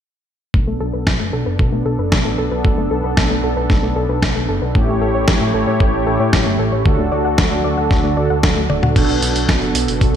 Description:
italo disco; 114 BPM; 4/4; straight; B minor; A4 = 440 Hz
warm analog pad; sustained chords; 0.5-10.2 s; D3 to C#5; -21 LUFS; equal; chorus
soft round pluck; arpeggios; 0.5-9.0 s; A3 to F#5; -24 LUFS; left 3 dB; chorus, digital delay
fat analog bass; bass; 0.5-10.1 s; D1 to A2; -21 LUFS; equal
electronic kick drum; drums; 0.5-10.1 s; -17 LUFS; equal; studio ambience
dusty soul sampler-style drum kit; drums; 1.1-10.1 s; crash cymbal, hi-hat, snare drum, toms; -20 LUFS; equal; studio ambience
mellow synth brass; stabs; 4.8-10.2 s; A2 to A4; -22 LUFS; right 4 dB; chorus, digital delay
moderate lush hall reverb, RT60 2.4 s; bright 1980s-style digital production; -14 LUFS; side -9 dB against mid
0.5-9.0 A section; 9.0-10.2 B section
filter sweep on synth arpeggio sound 0.5-9.0; drum fill 8.7
0.5 Bm7; 4.8 A7; 6.9 D; 9.0 Bm7

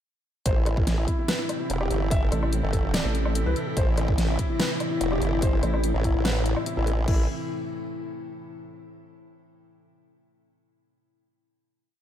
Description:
heavy wobble dubstep; 145 BPM; 4/4; half-time; A minor; A4 = 442 Hz
felt-muted upright piano; melody; 0.5-7.2 s; E4 to E5; -32 LUFS; left 1 dB; tape echo
evolving wavetable pad; sustained chords; 1.0-7.3 s; A2 to E4; -31 LUFS; left 2 dB; chorus, built-in reverb, sidechain pumping
formant-sweep wobble bass; bass; 0.5-7.3 s; E1 to A1; -26 LUFS; equal; chorus, overdrive
dubstep drum kit; drums; 0.5-7.2 s; crash cymbal, hi-hat, snare drum, woodblock; -30 LUFS; equal
electronic kick drum; drums; 0.5-7.2 s; -25 LUFS; equal
vowel-sweep wobble bass; bass; 2.3-5.9 s; A1 to C2; -24 LUFS; equal; chorus, overdrive
light reverb, digital ambience; -22 LUFS; side -10 dB against mid
0.5-7.1 drop; 7.1-8.7 final chord
drop 0.5-7.1
0.5 Am

